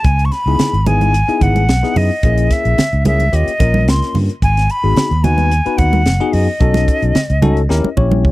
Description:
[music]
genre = electric jazz fusion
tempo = 110 BPM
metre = 4/4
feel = straight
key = unclear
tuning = A4 = 440 Hz
[part]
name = jazz flute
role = melody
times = 0.0-8.0 s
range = D#5 to C#6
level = -18 LUFS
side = equal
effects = none
[part]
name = fingered electric bass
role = bass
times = 0.0-8.3 s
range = F#1 to G2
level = -14 LUFS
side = equal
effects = transformer saturation
[part]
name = crisp fusion drum kit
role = drums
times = 0.0-8.3 s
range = hi-hat, kick drum, snare drum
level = -17 LUFS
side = equal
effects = none
[part]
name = bell-like tine electric piano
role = accompaniment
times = 0.5-8.3 s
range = A#3 to C#5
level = -20 LUFS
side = left 5 dB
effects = medium stereo tremolo, phaser
[part]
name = congas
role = percussion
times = 0.6-8.2 s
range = none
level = -19 LUFS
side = right 3 dB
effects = none
[sound]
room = little or no reverb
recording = dry, close 1970s-style studio recording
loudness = -12 LUFS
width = side -18 dB against mid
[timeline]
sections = 0.0-8.3 A section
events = drum fill 7.7-8.3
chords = 0.0 C#m9; 2.2 A#m7b5; 3.3 D#7; 4.4 G#m7; 6.6 B7; 7.7 D#7b9

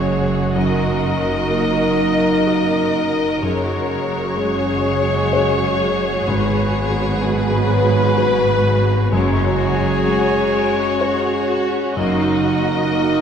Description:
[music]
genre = cinematic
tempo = 63 BPM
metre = 3/4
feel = rubato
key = F# major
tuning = A4 = 440 Hz
[part]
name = warm symphonic violin section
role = melody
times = 0.0-13.2 s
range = B4 to D#5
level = -23 LUFS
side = left 3 dB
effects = none
[part]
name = dark clarinet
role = second line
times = 0.0-13.2 s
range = D#4 to A#4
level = -27 LUFS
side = left 1 dB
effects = none
[part]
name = mellow cor anglais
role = second line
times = 0.0-13.2 s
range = G#4 to D#5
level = -26 LUFS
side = right 4 dB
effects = none
[part]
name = rich chamber violin section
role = second line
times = 0.0-13.2 s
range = G#3 to A#4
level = -27 LUFS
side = left 4 dB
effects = none
[part]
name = felt-muted upright piano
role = accompaniment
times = 0.0-13.2 s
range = F#2 to D#5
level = -25 LUFS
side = left 1 dB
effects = none
[part]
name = warm symphonic viola section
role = accompaniment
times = 0.0-13.2 s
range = F#4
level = -28 LUFS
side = right 3 dB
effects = none
[part]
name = mellow French horn section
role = sustained chords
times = 0.0-13.2 s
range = F#3 to D#4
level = -22 LUFS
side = equal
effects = none
[part]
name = clear symphonic cello section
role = bass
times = 0.0-12.8 s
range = F#2 to G#2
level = -25 LUFS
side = equal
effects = none
[part]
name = rich symphonic double bass section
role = bass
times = 0.0-12.8 s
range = F#1 to G#1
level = -23 LUFS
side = right 3 dB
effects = none
[sound]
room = wet scoring stage reverb, RT60 1.6 s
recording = heard from further back in the room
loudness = -15 LUFS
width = side -7 dB against mid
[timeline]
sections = 0.0-13.2 A section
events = none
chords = 0.0 F#sus2; 0.6 D#m/F#; 3.4 F#sus2; 6.3 G#m7; 9.1 F#sus2; 12.0 D#m/F#

